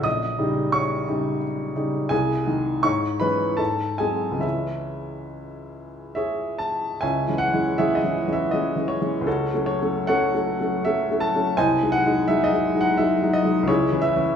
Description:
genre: classical, romantic character piece for solo piano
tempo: 68-90 BPM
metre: 3/4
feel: rubato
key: C# minor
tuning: A4 = 440 Hz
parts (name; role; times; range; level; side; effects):
- clear upright piano; solo; 0.0-14.4 s; A#1 to D#6; -20 LUFS; equal; none
room: moderate recital hall reverb, RT60 1.5 s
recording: studio reverb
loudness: -20 LUFS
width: side -8 dB against mid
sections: 0.0-7.0 A section; 7.0-14.4 B section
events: none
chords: 0.1 D#7/A#; 2.1 G#/B#; 2.8 C#m/G#; 3.6 G#7b9; 4.4 C#m; 9.3 F#m/C#; 11.6 G#7/B#; 13.7 C#m

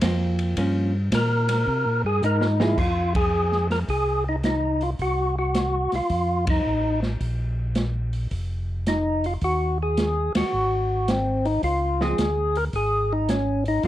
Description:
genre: soul jazz organ trio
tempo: 109 BPM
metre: 4/4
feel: swing 68% on 8ths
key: F minor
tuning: A4 = 440 Hz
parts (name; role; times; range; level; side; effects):
- vintage hollow-body jazz guitar; accompaniment; 0.0-2.8, 12.0-13.9 s; F3 to Ab4; -26 LUFS; right 2 dB; none
- mellow tonewheel organ; bass; 0.0-13.9 s; F1 to C3; -25 LUFS; equal; overdrive, chorus vibrato, slow rotary speaker
- open jazz drum kit; drums; 0.0-13.9 s; crash cymbal, hi-hat, kick drum, ride cymbal, snare drum; -28 LUFS; equal; none
- percussive tonewheel organ; melody; 1.1-13.9 s; C4 to Bb4; -23 LUFS; equal; slow rotary speaker, plate reverb
room: light reverb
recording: worn, warbling old tape, cassette tape, warbly pitch drift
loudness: -21 LUFS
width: side -13 dB against mid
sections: 0.0-2.8 A section; 2.8-13.9 B section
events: tonewheel organ solo 0.0-2.8; drum fill 2.2-2.8; band accent 3.1, 6.4, 10.2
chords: 0.0 Ab69 (rootless); 0.6 Gm7b5; 1.7 C5; 2.8 Fm; 5.0 Csus4; 6.1 F7; 7.2 Bb5; 9.4 Ebmadd11; 10.5 Ab7; 11.6 Db

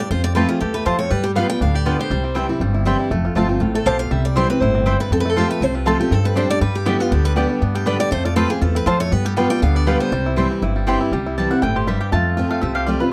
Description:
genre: bluegrass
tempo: 240 BPM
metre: 4/4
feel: swing 54% on 8ths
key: C major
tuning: A4 = 440 Hz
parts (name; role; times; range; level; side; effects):
- picked steel-string acoustic guitar; melody; 0.0-10.3 s; E4 to G5; -25 LUFS; equal; none
- picked steel-string acoustic guitar; accompaniment; 0.0-13.1 s; F2 to G4; -23 LUFS; equal; none
- bluegrass banjo; arpeggios; 0.0-13.1 s; G3 to G4; -30 LUFS; equal; none
- upright bass; bass; 0.1-12.9 s; F1 to G2; -24 LUFS; equal; none
- mandolin; stabs; 0.4-13.1 s; B3 to A5; -25 LUFS; equal; none
- lap resonator guitar; second line; 11.1-13.1 s; F4 to G4; -31 LUFS; equal; none
room: light reverb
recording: dark, warm production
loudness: -19 LUFS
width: mono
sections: 0.0-3.1 A section; 3.1-11.1 A section; 11.1-13.1 B section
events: mandolin solo 11.1-13.1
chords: 0.1 F; 1.1 G7; 2.1 C; 3.1 F; 4.1 C; 5.1 F; 6.1 Gsus4; 6.6 G; 8.1 F; 9.1 G7; 10.1 C; 12.1 F

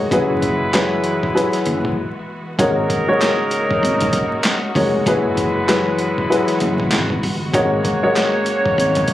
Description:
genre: hip hop, boom-bap hip-hop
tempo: 97 BPM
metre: 4/4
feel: swing 60% on 16ths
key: unclear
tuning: A4 = 439 Hz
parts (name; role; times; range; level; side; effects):
- warm upright piano; accompaniment; 0.0-9.1 s; F#3 to C#5; -18 LUFS; left 2 dB; high-pass filter, low-pass filter
- warm symphonic string section; sustained chords; 0.0-9.1 s; C#3 to F#4; -27 LUFS; right 1 dB; high-pass filter, low-pass filter
- woody fretless electric bass; bass; 0.0-9.0 s; E#1 to G#1; -24 LUFS; equal; none
- warm trumpet section; stabs; 0.1-9.1 s; F#3 to C#5; -23 LUFS; right 2 dB; high-pass filter, low-pass filter, ping-pong delay
- dusty soul sampler-style drum kit; drums; 0.1-9.1 s; handclaps, hi-hat, kick drum, snare drum; -22 LUFS; equal; overdrive
room: light reverb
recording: recorded on a phone in the room, club reverb, vinyl crackle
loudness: -15 LUFS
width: side -13 dB against mid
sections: 0.0-9.1 A section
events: break 2.0-2.6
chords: 0.1 F#9sus4; 2.6 G#9sus4; 5.1 F#9sus4; 7.5 G#9sus4

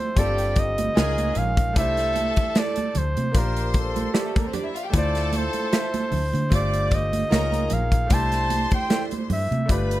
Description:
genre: lush 1970s-style soul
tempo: 76 BPM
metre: 4/4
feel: swing 54% on 16ths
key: C mixolydian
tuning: A4 = 440 Hz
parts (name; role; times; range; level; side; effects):
- warm flugelhorn; melody; 0.0-10.0 s; A4 to A5; -26 LUFS; right 1 dB; none
- clear concert grand piano; accompaniment; 0.0-10.0 s; D3 to Db5; -30 LUFS; left 1 dB; none
- rich studio violin section; second line; 0.2-10.0 s; A3 to D6; -32 LUFS; left 2 dB; none
- vintage muted fingered electric bass; bass; 0.2-10.0 s; G1 to D3; -25 LUFS; left 1 dB; none
- modern studio drum kit; drums; 0.2-10.0 s; hi-hat, kick drum, snare drum; -24 LUFS; equal; none
- congas; percussion; 0.6-9.9 s; none; -32 LUFS; right 6 dB; none
- mellow electric guitar; riff; 1.0-9.1 s; E4 to E5; -33 LUFS; right 6 dB; spring reverb
room: light reverb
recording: none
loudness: -20 LUFS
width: side -15 dB against mid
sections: 0.0-10.0 A section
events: none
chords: 0.2 G7sus4; 1.0 Db69; 1.8 C69; 3.3 Bb69; 4.9 Dm9; 6.5 G7sus4; 7.3 Db69; 8.1 C69

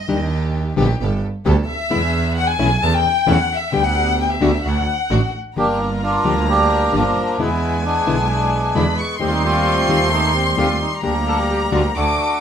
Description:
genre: tango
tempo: 132 BPM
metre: 4/4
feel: rubato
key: G major, G minor from 5.6 s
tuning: A4 = 444 Hz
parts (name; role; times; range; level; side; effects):
- warm chamber violin section; second line; 0.0-12.4 s; Eb5 to D6; -21 LUFS; left 4 dB; none
- nylon-string guitar; accompaniment; 0.1-11.8 s; B2 to G4; -20 LUFS; left 4 dB; none
- warm symphonic string section; stabs; 0.1-12.1 s; G3 to A4; -28 LUFS; right 1 dB; none
- clear double bass; bass; 0.1-12.1 s; G1 to E2; -21 LUFS; right 3 dB; none
- bandoneon; melody; 5.6-12.4 s; F3 to A4; -19 LUFS; equal; none
room: moderate studio reverb, RT60 0.8 s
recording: minimal, uncompressed stereo recording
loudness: -16 LUFS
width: side -8 dB against mid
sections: 0.0-5.6 A section; 5.6-12.4 B section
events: violin section solo 0.0-5.6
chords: 0.1 Ebmaj7; 1.0 Gadd9; 1.9 E7; 2.8 A/E; 3.7 G/D; 4.6 D; 5.6 Gm7; 7.4 E7; 9.2 Am7b5/Eb; 11.0 Gm/D

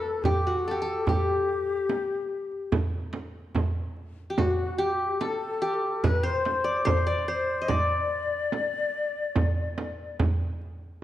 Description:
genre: Turkish makam ensemble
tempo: 72 BPM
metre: 4/4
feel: straight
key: D makam hicaz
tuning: A4 = 440 Hz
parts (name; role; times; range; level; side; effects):
- qanun; melody; 0.0-10.1 s; F#4 to Eb5; -27 LUFS; left 1 dB; slapback echo
- bright reedy ney; second line; 0.0-10.2 s; F#4 to Eb5; -30 LUFS; left 4 dB; none
- darbuka; percussion; 0.2-10.7 s; none; -30 LUFS; right 1 dB; none
- frame drum; percussion; 0.2-10.4 s; none; -30 LUFS; right 3 dB; none
room: moderate recital hall reverb, RT60 1.7 s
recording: dark, warm production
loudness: -25 LUFS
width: side -13 dB against mid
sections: 0.0-11.0 A section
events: none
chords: none

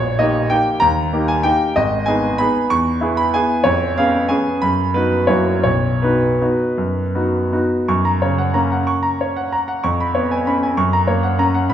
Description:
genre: classical, piano waltz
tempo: 156-201 BPM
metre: 3/4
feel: rubato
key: B major, F# major from 7.9 s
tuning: A4 = 440 Hz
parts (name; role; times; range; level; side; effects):
- bright grand piano; solo; 0.0-11.7 s; G#1 to C#6; -15 LUFS; equal; none
room: wet recital hall reverb, RT60 1.6 s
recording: recorded in a church or concert hall, faint mains hum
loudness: -15 LUFS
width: side -10 dB against mid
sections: 0.0-7.9 A section; 7.9-11.7 B section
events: none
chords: 0.0 D#7/A#; 1.8 G#m; 2.7 E; 3.6 C#7/E#; 4.6 B/F#; 5.3 F#7; 5.7 B; 7.9 F#; 9.8 C#7/E#; 10.8 F#

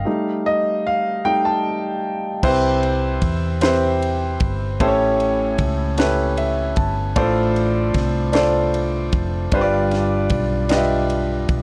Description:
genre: slow gospel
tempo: 51 BPM (dotted quarters)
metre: 6/8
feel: straight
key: C major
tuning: A4 = 440 Hz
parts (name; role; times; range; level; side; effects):
- warm grand piano; accompaniment; 0.0-11.6 s; G2 to A5; -21 LUFS; equal; none
- hollow-body short-scale fingered electric bass; bass; 0.0-11.6 s; F1 to E2; -26 LUFS; equal; none
- tight funk drum kit; drums; 2.4-11.6 s; crash cymbal, kick drum, ride cymbal, snare drum; -26 LUFS; equal; vintage 12-bit sampler grit
room: light reverb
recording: dry, gritty hardware recording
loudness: -20 LUFS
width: mono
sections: 0.0-2.4 A section; 2.4-11.6 B section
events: grand piano solo 0.0-2.4; break 0.1-2.4; grand piano fill 6.0-7.2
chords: 0.1 F9/G; 2.4 Cmaj7; 4.8 A7; 7.2 Dm7/A; 9.5 G7

